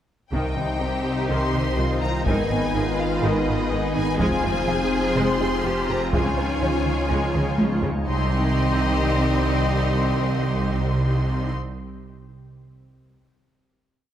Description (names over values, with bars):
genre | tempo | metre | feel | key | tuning
cinematic, hybrid orchestral and electronic film score | 124 BPM | 4/4 | straight | C phrygian | A4 = 439 Hz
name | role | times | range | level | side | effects
clear studio violin section | melody | 0.3-11.5 s | Eb5 to C6 | -31 LUFS | left 4 dB | none
clear symphonic violin section | second line | 0.3-11.5 s | Eb4 to Eb5 | -31 LUFS | left 2 dB | none
clear symphonic viola section | accompaniment | 0.3-11.5 s | C3 to F4 | -30 LUFS | right 1 dB | none
soft additive organ-like pad | sustained chords | 0.7-11.5 s | Eb3 to Eb5 | -29 LUFS | right 1 dB | ensemble chorus, built-in reverb
warm French horn section | sustained chords | 0.3-11.5 s | Eb3 to Eb4 | -30 LUFS | left 4 dB | none
resonant blip pluck | arpeggios | 0.3-8.0 s | C3 to Ab4 | -33 LUFS | right 1 dB | none
clear studio double bass section | bass | 0.3-11.5 s | F1 to Db2 | -28 LUFS | right 2 dB | none
clear symphonic cello section | bass | 0.3-11.5 s | C2 to Ab4 | -30 LUFS | right 2 dB | none
phased detuned saw bass | bass | 0.3-11.5 s | F1 to Db2 | -28 LUFS | equal | phaser
taiko ensemble | drums | 0.3-8.1 s | none | -26 LUFS | equal | none
room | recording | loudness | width
moderate concert hall reverb, RT60 2.1 s | none | -20 LUFS | side -10 dB against mid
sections
0.3-8.1 theme; 8.1-11.9 final chord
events
drum fill 7.3-8.1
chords
0.3 Cm; 2.3 Abm; 4.2 Fm; 6.1 Db; 8.1 Cm